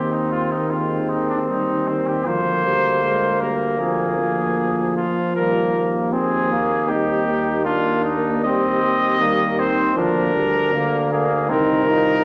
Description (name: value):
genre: classical, brass quintet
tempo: 78 BPM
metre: 4/4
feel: rubato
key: Eb major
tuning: A4 = 441 Hz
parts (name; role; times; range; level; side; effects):
- mellow trumpet; melody; 0.0-12.2 s; C4 to Eb5; -24 LUFS; equal; none
- warm flugelhorn; second line; 0.0-12.2 s; Bb3 to Eb4; -25 LUFS; equal; none
- mellow French horn; accompaniment; 0.0-12.2 s; D3 to Bb3; -27 LUFS; equal; none
- mellow trombone; accompaniment; 0.0-12.2 s; F3 to F4; -31 LUFS; equal; none
- warm tuba; bass; 0.0-12.2 s; C2 to Eb2; -29 LUFS; equal; none
room: wet recital hall reverb, RT60 1.5 s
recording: nothing above 10.4 kHz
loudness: -20 LUFS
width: mono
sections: 0.0-12.2 A section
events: none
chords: 0.0 Eb69; 2.3 Bb7/D; 5.4 Eb; 8.4 Cm/Eb; 10.0 Bb/D; 11.5 Ab69/C (rootless)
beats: 0.70 1.47 | 2.26 3.03 3.80 4.57 | 5.36 6.13 6.89 7.65 | 8.45 9.21 9.96 10.73 | 11.50